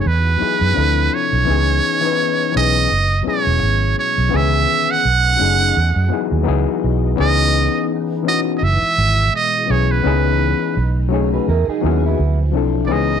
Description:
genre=R&B, neo-soul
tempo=84 BPM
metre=4/4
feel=swing 55% on 16ths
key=C# minor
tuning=A4 = 439 Hz
part: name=trumpet with metal mute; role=melody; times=0.0-13.2 s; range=B4 to F#5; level=-18 LUFS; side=right 5 dB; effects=slapback echo
part: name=overdriven reed electric piano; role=accompaniment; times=0.0-13.2 s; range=D#3 to B4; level=-20 LUFS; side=left 14 dB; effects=none
part: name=soft string machine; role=sustained chords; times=0.0-13.2 s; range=B2 to G#4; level=-28 LUFS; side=right 1 dB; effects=ensemble chorus
part: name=vintage muted fingered electric bass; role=bass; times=0.1-13.2 s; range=E1 to F#2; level=-17 LUFS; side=right 2 dB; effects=none
part: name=mellow electric guitar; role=second line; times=11.1-12.4 s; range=B3 to C#5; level=-22 LUFS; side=right 9 dB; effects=none
room=light reverb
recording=none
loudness=-14 LUFS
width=side -8 dB against mid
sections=0.0-7.2 A section; 7.2-13.2 B section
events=none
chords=0.0 Emaj9; 0.8 Dm9; 1.5 C#m9; 2.9 F#9sus4; 4.3 C#m9; 5.0 B13; 5.8 Emaj9; 6.5 C#m11; 7.2 C#m9; 8.6 F#9sus4; 10.0 C#m9; 10.8 B13; 11.5 Emaj9; 12.2 Dm9

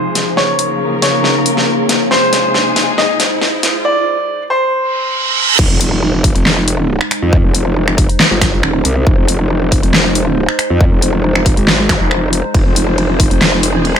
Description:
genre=heavy wobble dubstep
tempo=138 BPM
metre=4/4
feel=half-time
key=F minor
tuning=A4 = 438 Hz
part: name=clear baby grand piano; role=melody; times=0.0-5.5 s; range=C5 to Eb5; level=-16 LUFS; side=equal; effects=digital delay
part: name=warm studio string section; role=sustained chords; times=0.0-3.8, 12.5-14.0 s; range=C3 to C5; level=-20 LUFS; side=left 2 dB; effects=sidechain pumping, low-pass filter
part: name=riser, reverse cymbal, impact and zap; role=sound effects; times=1.9-7.3, 11.9-12.0 s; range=none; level=-19 LUFS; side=right 3 dB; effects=none
part: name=warbly tape-like pad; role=texture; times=0.0-14.0 s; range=F3 to Db5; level=-19 LUFS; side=left 1 dB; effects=chorus, built-in reverb, sidechain pumping
part: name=big-room dance drum kit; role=drums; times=0.2-14.0 s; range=crash cymbal, finger snaps, handclaps, hi-hat, ride cymbal, snare drum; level=-15 LUFS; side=equal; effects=high-pass filter on snare, high-pass filter on hats, high-pass filter on toms, high-pass filter on cymbals
part: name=growl bass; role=bass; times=5.6-13.9 s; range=Eb1 to F2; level=-14 LUFS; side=equal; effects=chorus, overdrive
part: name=electronic kick drum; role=drums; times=5.6-13.3 s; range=none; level=-13 LUFS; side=equal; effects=none
room=light reverb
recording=high-pass filter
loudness=-11 LUFS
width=side -8 dB against mid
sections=0.0-5.6 A section; 5.6-14.0 B section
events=build-up 0.0-5.6; drum fill 0.0-3.9; filter sweep 0.0-5.6; reverse cymbal 4.9-5.6; drop 5.6-14.0; impact 5.6-7.3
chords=0.4 Bbm; 2.1 Fm; 3.9 N.C.; 5.6 Fm

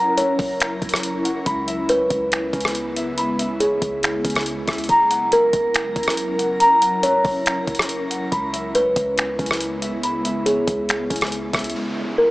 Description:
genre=hip hop, atmospheric cloud-rap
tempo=140 BPM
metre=4/4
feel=half-time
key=C# dorian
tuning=A4 = 441 Hz
part: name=ethereal airy pad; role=sustained chords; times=0.0-12.3 s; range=F#2 to A#4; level=-27 LUFS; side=equal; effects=ensemble chorus, built-in reverb
part: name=mellow electric guitar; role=arpeggios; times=0.0-11.7 s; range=C#4 to B5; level=-23 LUFS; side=equal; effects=low-pass filter, digital delay
part: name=soft 808-style bass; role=bass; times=0.0-11.7 s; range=E1 to C#2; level=-36 LUFS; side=equal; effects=none
part: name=kalimba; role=melody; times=0.2-12.3 s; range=G#4 to C#5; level=-22 LUFS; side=equal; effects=low-pass filter, digital delay
part: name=dusty soul sampler-style drum kit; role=drums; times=0.2-11.7 s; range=finger snaps, hi-hat, kick drum, rim click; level=-24 LUFS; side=equal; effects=none
part: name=downlifter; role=sound effects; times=11.7-12.3 s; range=none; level=-35 LUFS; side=equal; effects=none
room=moderate shimmer reverb, RT60 5.3 s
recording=small speaker sound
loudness=-18 LUFS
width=side -20 dB against mid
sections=0.0-11.7 A section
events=none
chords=0.0 F#7; 1.5 C#m7; 4.9 F#7; 8.3 C#m7; 11.7 F#7

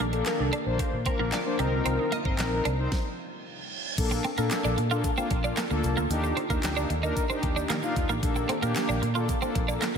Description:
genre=dance-pop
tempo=113 BPM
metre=4/4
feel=straight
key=Bb major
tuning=A4 = 439 Hz
part: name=mellow synth brass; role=accompaniment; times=0.0-10.0 s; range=Bb3 to C5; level=-30 LUFS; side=left 2 dB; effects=chorus, sidechain pumping, slapback echo
part: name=granular cloud pad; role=sustained chords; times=0.0-10.0 s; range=D3 to D5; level=-37 LUFS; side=right 1 dB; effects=built-in reverb, sidechain pumping
part: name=glassy wavetable pluck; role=arpeggios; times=0.0-2.3 s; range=D4 to Eb5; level=-37 LUFS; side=right 2 dB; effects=chorus, sidechain pumping, ping-pong delay, slapback echo
part: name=twelve-string electric guitar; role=riff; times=0.0-10.0 s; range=G3 to F4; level=-32 LUFS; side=right 4 dB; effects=wide subtle chorus
part: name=vintage muted fingered electric bass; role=bass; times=0.0-10.0 s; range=G1 to Eb3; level=-30 LUFS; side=equal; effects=sidechain pumping
part: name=pop drum kit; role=drums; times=0.0-9.9 s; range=crash cymbal, handclaps, hi-hat, kick drum, snare drum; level=-32 LUFS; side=equal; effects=none
part: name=reverse cymbal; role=sound effects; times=3.4-4.0 s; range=none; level=-37 LUFS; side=right 6 dB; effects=none
part: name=tube shaker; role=percussion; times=4.0-10.0 s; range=none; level=-45 LUFS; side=right 14 dB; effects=none
room=moderate concert hall reverb, RT60 1.9 s, digital ambience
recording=big arena sound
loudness=-25 LUFS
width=side -6 dB against mid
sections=0.0-4.0 A section; 4.0-10.0 B section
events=stop 2.9-4.0; reverse cymbal 3.4-4.0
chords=0.0 Bbmaj7; 1.6 Cm7; 4.0 Bbmaj7; 6.1 Ebmaj7; 8.2 Bbmaj7

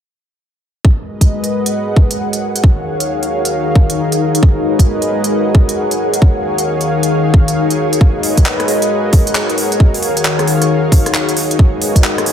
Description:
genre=UK garage, two-step garage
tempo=134 BPM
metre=4/4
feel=swing 63% on 16ths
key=G# minor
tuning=A4 = 440 Hz
part: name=warm analog pad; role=sustained chords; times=0.8-12.3 s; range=D#3 to E#5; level=-18 LUFS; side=left 1 dB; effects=chorus, sidechain pumping
part: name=electronic kick drum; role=drums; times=0.8-12.0 s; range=none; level=-10 LUFS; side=equal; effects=none
part: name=ethereal airy pad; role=texture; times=1.6-12.3 s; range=D#4 to F#5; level=-18 LUFS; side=left 1 dB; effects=ensemble chorus, built-in reverb, sidechain pumping
part: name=garage drum kit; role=drums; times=1.2-12.3 s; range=handclaps, hi-hat, rim click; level=-18 LUFS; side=right 1 dB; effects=none
room=light reverb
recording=none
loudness=-11 LUFS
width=side -9 dB against mid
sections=0.8-12.3 A section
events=none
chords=0.8 G#m9; 2.6 D#m9; 4.4 G#m9; 6.2 D#m9; 8.0 G#m9; 9.8 D#m9; 11.6 G#m9

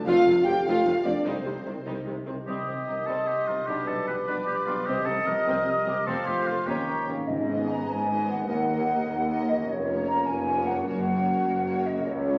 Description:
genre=cinematic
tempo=100 BPM (dotted quarters)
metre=6/8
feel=straight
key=C dorian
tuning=A4 = 444 Hz
part: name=concert harp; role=arpeggios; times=0.0-12.4 s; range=E#2 to C#5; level=-38 LUFS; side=equal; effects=none
part: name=mellow tuba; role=bass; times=0.0-2.3 s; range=F1 to C2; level=-39 LUFS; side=equal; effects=none
part: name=rich symphonic cello section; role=bass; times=0.0-12.4 s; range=C#2 to C3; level=-40 LUFS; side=equal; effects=none
part: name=warm symphonic violin section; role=melody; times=0.1-12.4 s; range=C5 to G5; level=-40 LUFS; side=equal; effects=none
part: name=dark symphonic violin section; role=second line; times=0.1-12.4 s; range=G3 to G5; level=-42 LUFS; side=equal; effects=none
part: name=mellow hollow flute section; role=second line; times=0.1-12.4 s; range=C5 to F6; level=-32 LUFS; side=equal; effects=none
part: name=warm studio viola section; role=accompaniment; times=0.1-12.4 s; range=C3 to F4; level=-39 LUFS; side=equal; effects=none
part: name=mellow French horn section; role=sustained chords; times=0.1-12.4 s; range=G3 to G4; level=-32 LUFS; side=equal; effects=none
part: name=rich symphonic double bass section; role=bass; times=0.1-12.4 s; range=F1 to Eb2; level=-36 LUFS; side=equal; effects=none
part: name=warm oboe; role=second line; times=2.5-7.1 s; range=F4 to B4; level=-34 LUFS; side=equal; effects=none
part: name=mellow trumpet section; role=stabs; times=2.5-7.0 s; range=B4 to Eb5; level=-32 LUFS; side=equal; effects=none
part: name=timpani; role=percussion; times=2.5-7.8 s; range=G#2 to C3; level=-43 LUFS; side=equal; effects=none
room=wet recital hall reverb, RT60 1.3 s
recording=recorded in a church or concert hall, small speaker sound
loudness=-26 LUFS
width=mono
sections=0.0-2.5 A section; 2.5-7.3 B section; 7.3-12.4 C section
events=none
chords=0.1 F; 1.3 Cm; 3.7 G/B; 4.9 Cm; 6.1 F; 6.7 Eb7; 7.3 G#m; 8.5 D#m; 9.7 A#m/E#; 10.9 F#

